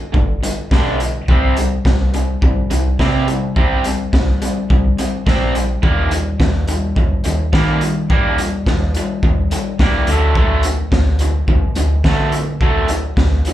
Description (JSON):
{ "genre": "indie rock", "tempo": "106 BPM", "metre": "4/4", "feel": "straight", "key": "unclear", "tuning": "A4 = 440 Hz", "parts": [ { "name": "raw garage guitar", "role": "riff", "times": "0.0-13.5 s", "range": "G2 to C4", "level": "-19 LUFS", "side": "equal", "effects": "overdrive, slapback echo" }, { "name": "woody FM bass", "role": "bass", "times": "0.1-13.4 s", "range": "G1 to Eb3", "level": "-18 LUFS", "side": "equal", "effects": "none" }, { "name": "raw garage drum kit", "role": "drums", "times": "0.1-13.5 s", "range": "hi-hat, kick drum, snare drum", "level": "-17 LUFS", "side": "equal", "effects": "none" } ], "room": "little or no reverb", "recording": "live gig heard through the venue's PA, club reverb", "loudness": "-14 LUFS", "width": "side -13 dB against mid", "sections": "0.0-13.5 A section", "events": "none", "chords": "0.0 G5; 1.3 C5; 5.8 Eb; 10.1 D" }